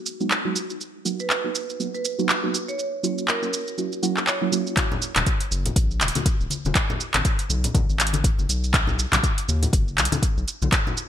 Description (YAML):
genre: afro house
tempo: 121 BPM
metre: 4/4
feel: swing 57% on 16ths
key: unclear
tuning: A4 = 441 Hz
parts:
  - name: afro-pop drum kit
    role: drums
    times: 0.1-11.1 s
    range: handclaps, hi-hat, shaker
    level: -24 LUFS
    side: right 1 dB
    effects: gated reverb
  - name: deep mellow chord stab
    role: stabs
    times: 0.2-4.6 s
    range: F#3 to F#4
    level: -27 LUFS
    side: right 3 dB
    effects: chorus, sidechain pumping, ping-pong delay
  - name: marimba with medium hard mallets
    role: melody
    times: 1.2-4.8 s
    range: A#4 to C#5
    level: -32 LUFS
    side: right 4 dB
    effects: ping-pong delay
  - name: electronic kick drum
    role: drums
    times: 4.8-10.8 s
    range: none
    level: -22 LUFS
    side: left 1 dB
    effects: none
  - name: congas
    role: percussion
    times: 4.9-11.0 s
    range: none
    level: -29 LUFS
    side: left 4 dB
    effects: none
  - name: round analog bass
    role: bass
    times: 5.2-10.7 s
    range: D#1 to D#2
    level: -25 LUFS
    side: left 1 dB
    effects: tube saturation, sidechain pumping
room: light reverb, digital ambience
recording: bright 1980s-style digital production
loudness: -20 LUFS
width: side -10 dB against mid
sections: 0.0-4.8 A section; 4.8-11.1 B section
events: drop 4.8-11.1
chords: 0.0 G#m7; 0.8 Bmaj7; 2.8 F#7; 4.8 D#m; 6.8 G#m; 8.7 B5